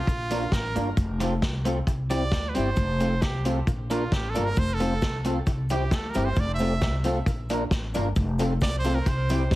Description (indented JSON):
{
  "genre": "ska",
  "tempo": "133 BPM",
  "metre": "4/4",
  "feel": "straight",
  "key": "F major",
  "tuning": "A4 = 440 Hz",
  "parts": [
    { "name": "brilliant trumpet", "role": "melody", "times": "0.0-9.5 s", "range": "F4 to E5", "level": "-32 LUFS", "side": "right 2 dB", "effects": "tape echo" },
    { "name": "tonewheel organ", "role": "stabs", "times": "0.1-9.4 s", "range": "C4 to Bb4", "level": "-32 LUFS", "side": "left 3 dB", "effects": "overdrive, stopped rotary speaker" },
    { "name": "upright bass", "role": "bass", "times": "0.1-9.6 s", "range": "F1 to D2", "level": "-27 LUFS", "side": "equal", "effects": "none" },
    { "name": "vintage drum kit", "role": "drums", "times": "0.1-9.6 s", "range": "hi-hat, kick drum, snare drum", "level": "-28 LUFS", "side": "equal", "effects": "none" },
    { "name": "cabasa", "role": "percussion", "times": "0.1-9.6 s", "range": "none", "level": "-50 LUFS", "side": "left 3 dB", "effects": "none" },
    { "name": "electric guitar through a small old amp", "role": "accompaniment", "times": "0.3-9.4 s", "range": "G3 to Bb4", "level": "-30 LUFS", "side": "right 2 dB", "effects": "lush chorus" }
  ],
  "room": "light reverb, small room reverb",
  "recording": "heavily compressed radio sound, multiband compression",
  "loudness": "-23 LUFS",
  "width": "side -16 dB against mid",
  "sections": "0.0-9.6 A section",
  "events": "trumpet solo 0.0-9.6",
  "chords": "0.1 Bb; 1.0 F; 1.9 C; 2.8 F; 3.7 Bb; 4.6 F; 5.5 C; 6.4 F; 7.3 Bb; 8.2 F"
}